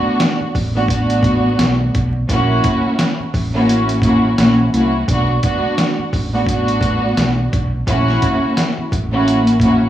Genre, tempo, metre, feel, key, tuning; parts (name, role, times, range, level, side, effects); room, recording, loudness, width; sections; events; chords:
hip hop, boom-bap hip-hop; 86 BPM; 4/4; swing 60% on 16ths; B minor; A4 = 440 Hz
dark studio string section; accompaniment; 0.0-9.9 s; A3 to F#4; -15 LUFS; equal; high-pass filter, low-pass filter
trip hop sampler-style drum kit; drums; 0.2-9.8 s; hi-hat, kick drum, snare drum; -20 LUFS; equal; overdrive
deep dub fingered electric bass; bass; 0.4-9.9 s; A1 to C2; -20 LUFS; equal
little or no reverb; vinyl crackle, small room ambience; -13 LUFS; side -12 dB against mid
0.0-9.9 A section
0.0 Bm7; 2.3 F#7; 5.1 Bm7; 7.9 F#7